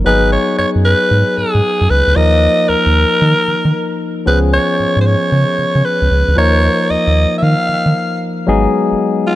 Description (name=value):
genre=R&B, new jack swing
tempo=114 BPM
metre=4/4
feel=swing 65% on 16ths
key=G# dorian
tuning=A4 = 439 Hz
part: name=barky tine electric piano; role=accompaniment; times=0.0-9.4 s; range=E#3 to A#4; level=-17 LUFS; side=left 2 dB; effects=none
part: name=round analog bass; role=bass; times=0.0-8.9 s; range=F#1 to D#3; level=-14 LUFS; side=equal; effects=none
part: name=raspy alto saxophone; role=melody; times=0.1-9.4 s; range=E#4 to E#5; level=-15 LUFS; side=equal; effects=none
room=light reverb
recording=nothing above 10.7 kHz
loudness=-11 LUFS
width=side -15 dB against mid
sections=0.1-8.5 A section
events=none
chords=0.1 G#m7; 2.2 D#sus2; 4.3 C#7; 6.4 D#sus2; 8.5 G#m7